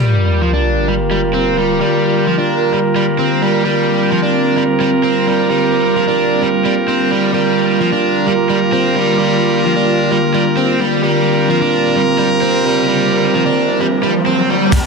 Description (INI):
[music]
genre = breakbeat, breaks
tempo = 130 BPM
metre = 4/4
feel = straight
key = G minor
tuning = A4 = 439 Hz
[part]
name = warbly tape-like pad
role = sustained chords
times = 0.5-14.9 s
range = D3 to F4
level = -17 LUFS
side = equal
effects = chorus, built-in reverb, sidechain pumping
[part]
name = overdriven electric guitar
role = riff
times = 0.0-14.8 s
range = F3 to D4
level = -17 LUFS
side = equal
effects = tube saturation, spring reverb, low-pass filter, ping-pong delay
[part]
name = bright brass ensemble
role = stabs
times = 0.0-14.7 s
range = F4 to Bb4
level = -16 LUFS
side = right 3 dB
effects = low-pass filter, ping-pong delay
[part]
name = sub drop, riser and impact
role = sound effects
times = 0.0-1.8, 12.3-14.9 s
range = none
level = -20 LUFS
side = equal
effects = none
[part]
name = crunchy breakbeat drum kit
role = drums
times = 14.7-14.8 s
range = crash cymbal, hi-hat, kick drum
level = -17 LUFS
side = equal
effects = none
[part]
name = shaker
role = drums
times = 14.7-14.8 s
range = none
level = -34 LUFS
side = right 1 dB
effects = none
[sound]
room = wet small room reverb, RT60 0.5 s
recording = dense, heavily limited modern master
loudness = -12 LUFS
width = side -4 dB against mid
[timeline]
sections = 0.0-14.7 A section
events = impact 0.0-1.8; filter sweep on brass ensemble 0.0-14.7; filter sweep on ambient pad 0.0-14.7; riser 12.3-14.7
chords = 0.0 Gm7